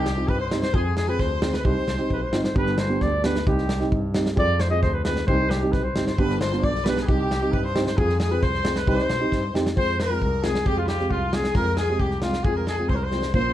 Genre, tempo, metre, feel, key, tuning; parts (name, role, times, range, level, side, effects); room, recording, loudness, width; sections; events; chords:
klezmer; 133 BPM; 2/4; straight; C harmonic minor, F minor from 9.8 s; A4 = 442 Hz
mellow cornet; melody; 0.0-13.5 s; F4 to Eb5; -27 LUFS; left 1 dB; slapback echo
clear violin; second line; 0.0-2.3, 6.1-13.5 s; E4 to D5; -31 LUFS; left 3 dB
clear double bass; bass; 0.0-13.5 s; G1 to B2; -26 LUFS; equal
crunchy breakbeat drum kit; drums; 0.1-13.4 s; kick drum, snare drum; -26 LUFS; equal
dark upright piano; accompaniment; 0.2-13.5 s; Ab3 to Ab4; -26 LUFS; right 2 dB
light reverb; dark, warm production; -20 LUFS; side -12 dB against mid
0.0-2.6 A section; 2.6-9.8 A section; 9.8-13.5 B section
drum fill 9.3-9.8, 13.1
0.0 Cm; 0.7 Fm; 1.6 Cm; 2.6 G; 3.5 Cm; 4.4 Fm; 5.3 Cm; 6.2 G; 7.1 Cm; 8.0 Fm; 8.9 Cm; 9.8 Fm